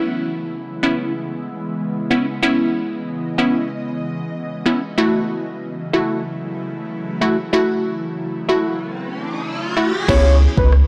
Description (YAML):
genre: dancehall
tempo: 94 BPM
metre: 4/4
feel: straight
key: C# minor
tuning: A4 = 440 Hz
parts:
  - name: wavetable chord stab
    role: accompaniment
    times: 0.0-10.9 s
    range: A3 to F#4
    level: -21 LUFS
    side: equal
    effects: sidechain pumping
  - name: ethereal airy pad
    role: sustained chords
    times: 0.0-10.0 s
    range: C#3 to D#5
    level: -28 LUFS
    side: equal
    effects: ensemble chorus, built-in reverb, sidechain pumping
  - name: riser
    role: sound effects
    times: 8.4-10.1 s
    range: none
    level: -29 LUFS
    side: equal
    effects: none
  - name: soft octave-layered synth lead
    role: melody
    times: 10.1-10.7 s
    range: B4 to C#5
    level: -24 LUFS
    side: equal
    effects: chorus, digital delay
  - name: warm sub bass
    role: bass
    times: 10.1-10.8 s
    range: C#2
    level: -15 LUFS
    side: equal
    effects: none
  - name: afro-pop drum kit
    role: drums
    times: 10.1-10.9 s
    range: crash cymbal, kick drum, rim click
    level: -24 LUFS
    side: equal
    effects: none
room: light reverb, digital ambience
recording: blown-out, overdriven recording, overdrive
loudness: -20 LUFS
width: mono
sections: 0.0-10.1 A section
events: riser 8.4-10.1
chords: 0.0 C#m7; 5.0 F#m7; 10.1 C#m7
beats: 0.51 1.15 1.79 | 2.43 3.06 3.70 4.34 | 4.98 5.62 6.26 6.89 | 7.53 8.17 8.81 9.45 | 10.09 10.72